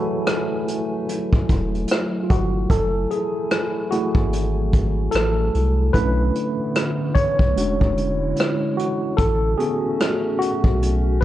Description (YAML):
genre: lo-fi hip hop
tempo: 74 BPM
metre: 4/4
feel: swing 61% on 16ths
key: F# minor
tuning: A4 = 442 Hz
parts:
  - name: mellow tine electric piano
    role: accompaniment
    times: 0.0-11.2 s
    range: G#3 to C#5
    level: -23 LUFS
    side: equal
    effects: medium stereo tremolo, low-pass filter
  - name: warbly tape-like pad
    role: sustained chords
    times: 0.0-11.2 s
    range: D3 to G#5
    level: -28 LUFS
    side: equal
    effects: chorus, built-in reverb, low-pass filter
  - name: vintage brush drum kit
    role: drums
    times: 0.3-11.2 s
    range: hi-hat, kick drum, rim click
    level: -21 LUFS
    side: equal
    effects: vintage 12-bit sampler grit
  - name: warm sub bass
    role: bass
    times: 1.5-11.2 s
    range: E1 to B#1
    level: -22 LUFS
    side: equal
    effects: transformer saturation
room: light reverb, small room ambience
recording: worn, warbling old tape, cassette tape, warbly pitch drift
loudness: -18 LUFS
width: side -13 dB against mid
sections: 0.0-2.7 A section; 2.7-11.2 B section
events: tine electric piano solo 0.0-2.7, 2.7-11.2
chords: 0.0 F#m9; 5.9 Bm11; 7.6 E13; 9.2 A69